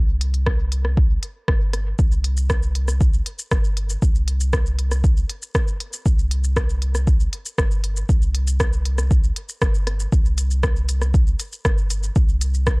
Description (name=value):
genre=dub techno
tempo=118 BPM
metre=4/4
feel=straight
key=unclear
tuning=A4 = 441 Hz
part: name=pure sine sub bass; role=bass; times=0.0-12.8 s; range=G1 to C2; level=-22 LUFS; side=equal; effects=transformer saturation, sidechain pumping
part: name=deep house drum kit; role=drums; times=0.2-12.8 s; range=hi-hat, rim click, shaker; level=-26 LUFS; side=equal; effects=none
part: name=electronic kick drum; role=drums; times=0.5-12.8 s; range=none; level=-18 LUFS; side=equal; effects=none
room=digital ambience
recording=dry, gritty hardware recording, cassette tape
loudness=-18 LUFS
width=side -31 dB against mid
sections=0.0-10.1 A section; 10.1-12.8 A section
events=none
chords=none